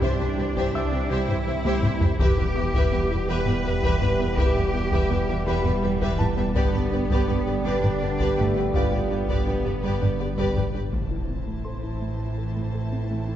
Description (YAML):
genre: cinematic, hybrid orchestral and electronic film score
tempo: 55 BPM (dotted quarters)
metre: 6/8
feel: straight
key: A minor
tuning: A4 = 440 Hz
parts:
  - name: rich symphonic violin section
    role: melody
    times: 0.0-10.8 s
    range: D5 to E5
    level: -38 LUFS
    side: left 2 dB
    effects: none
  - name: warm symphonic violin section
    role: second line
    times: 0.0-13.4 s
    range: B4 to A5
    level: -32 LUFS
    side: left 2 dB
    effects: none
  - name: warm symphonic viola section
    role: accompaniment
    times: 0.0-13.4 s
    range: E3 to G4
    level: -34 LUFS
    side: equal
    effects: none
  - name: clear trombone section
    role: sustained chords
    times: 0.0-13.4 s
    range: D3 to A3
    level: -32 LUFS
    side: right 3 dB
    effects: none
  - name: warm French horn section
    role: sustained chords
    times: 0.0-13.4 s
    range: B3 to G4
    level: -33 LUFS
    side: equal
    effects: none
  - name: soft round pluck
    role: arpeggios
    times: 0.0-13.4 s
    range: C3 to A4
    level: -34 LUFS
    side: left 1 dB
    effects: chorus, digital delay
  - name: clear symphonic cello section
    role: bass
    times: 0.0-13.4 s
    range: A2 to B4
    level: -31 LUFS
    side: right 2 dB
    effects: none
  - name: punchy sub bass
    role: bass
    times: 0.0-13.4 s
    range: E1 to C2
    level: -32 LUFS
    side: equal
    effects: none
  - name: rich studio double bass section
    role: bass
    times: 0.0-13.4 s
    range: A1 to G2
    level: -29 LUFS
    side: right 2 dB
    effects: none
  - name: taiko ensemble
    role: drums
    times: 0.0-12.9 s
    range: none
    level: -26 LUFS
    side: equal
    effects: none
  - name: warm concert grand piano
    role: texture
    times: 0.0-13.4 s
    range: F4 to E6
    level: -38 LUFS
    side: left 1 dB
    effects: digital delay
  - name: impact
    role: sound effects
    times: 10.9-13.1 s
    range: none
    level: -33 LUFS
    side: equal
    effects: none
room: wet scoring stage reverb, RT60 2.2 s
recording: heard from further back in the room, nothing above 8.0 kHz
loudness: -21 LUFS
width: side -11 dB against mid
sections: 0.0-10.9 A section; 10.9-13.4 B section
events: drum fill 1.7-2.2; impact 10.9-13.1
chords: 0.0 C; 2.2 Em; 6.6 G; 10.9 Am